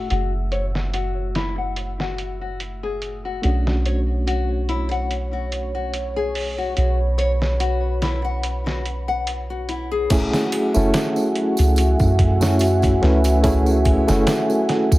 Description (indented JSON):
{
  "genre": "trip hop",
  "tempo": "72 BPM",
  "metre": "4/4",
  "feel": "swing 55% on 16ths",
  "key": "F# minor",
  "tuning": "A4 = 440 Hz",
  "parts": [
    { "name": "bright reed electric piano", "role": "accompaniment", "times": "0.0-15.0 s", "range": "A3 to B4", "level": "-22 LUFS", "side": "equal", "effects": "tremolo, tape echo" },
    { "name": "dark analog pad", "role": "sustained chords", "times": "0.0-15.0 s", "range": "A3 to E6", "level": "-27 LUFS", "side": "right 1 dB", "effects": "chorus" },
    { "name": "nylon-string guitar", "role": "arpeggios", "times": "0.0-10.1 s", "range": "E4 to F#5", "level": "-27 LUFS", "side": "left 5 dB", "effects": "low-pass filter, tape echo" },
    { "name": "soft 808-style bass", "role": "bass", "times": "0.0-15.0 s", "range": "F#1 to F#2", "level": "-21 LUFS", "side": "equal", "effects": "none" },
    { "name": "trip hop sampler-style drum kit", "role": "drums", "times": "0.1-15.0 s", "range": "crash cymbal, hi-hat, kick drum, snare drum", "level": "-24 LUFS", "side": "equal", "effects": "low-pass filter on hats, low-pass filter on snare, low-pass filter on cymbals, low-pass filter on kick" },
    { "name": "tambourine and triangle", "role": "percussion", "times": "10.1-15.0 s", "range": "none", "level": "-35 LUFS", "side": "right 4 dB", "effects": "none" }
  ],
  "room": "light reverb, digital ambience",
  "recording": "none",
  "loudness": "-18 LUFS",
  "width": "side -18 dB against mid",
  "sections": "0.0-10.1 A section; 10.1-15.0 B section",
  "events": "filter sweep on nylon-string guitar 0.0-10.1",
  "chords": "0.0 F#m9; 3.4 Bm9; 10.1 F#m9",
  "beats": "| 0.11 0.94 1.77 2.61 | 3.44 4.27 5.11 5.94 | 6.77 7.61 8.44 9.27 | 10.11 10.94 11.77 12.61 | 13.44 14.27"
}